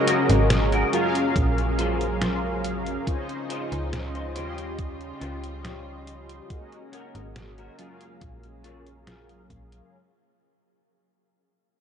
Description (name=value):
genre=vaporwave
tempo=70 BPM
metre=4/4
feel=straight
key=unclear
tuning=A4 = 439 Hz
part: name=mellow synth brass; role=accompaniment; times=0.0-9.9 s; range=Gb3 to C6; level=-27 LUFS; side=equal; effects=lush chorus, analog delay
part: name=rich studio string section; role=sustained chords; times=0.0-9.9 s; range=Db3 to F4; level=-36 LUFS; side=equal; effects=low-pass filter
part: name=semi-hollow electric guitar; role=riff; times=0.1-9.8 s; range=Db4 to Db5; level=-31 LUFS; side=left 2 dB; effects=ensemble chorus, vintage 12-bit sampler grit, low-pass filter, analog delay
part: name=detuned 8-bit digital drum machine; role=drums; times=0.1-9.9 s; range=hi-hat, snare drum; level=-29 LUFS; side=equal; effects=none
part: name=slap-like FM bass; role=bass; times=0.3-9.8 s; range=Ab1 to Eb2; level=-27 LUFS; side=equal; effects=none
part: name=electronic kick drum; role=drums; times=1.4-9.7 s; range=none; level=-28 LUFS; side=equal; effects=none
room=light reverb, digital ambience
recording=nothing above 10.5 kHz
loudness=-22 LUFS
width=side -8 dB against mid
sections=0.0-9.9 A section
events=fade-out 0.0-9.9; filter sweep on string section 0.0-9.9; filter sweep on clean electric guitar 0.0-9.9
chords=0.0 Ab9sus4; 0.9 Gbmaj9/Bb; 3.1 Dbmaj9; 4.4 Eb13; 6.5 Ab9sus4; 7.8 Gbmaj9/Bb